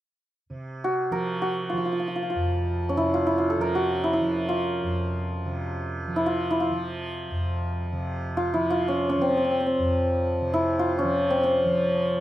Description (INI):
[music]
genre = indian classical, Hindustani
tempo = free time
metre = none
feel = none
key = unclear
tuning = A4 = 440 Hz
[part]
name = tanpura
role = drone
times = 0.5-12.2 s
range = F2 to F3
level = -29 LUFS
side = right 1 dB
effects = none
[part]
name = santur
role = melody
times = 0.8-12.2 s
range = C4 to Bb4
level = -24 LUFS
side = equal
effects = none
[sound]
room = light reverb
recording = dry, close 1970s-style studio recording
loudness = -23 LUFS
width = side -14 dB against mid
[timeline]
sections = 0.5-12.2 A section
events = none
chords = none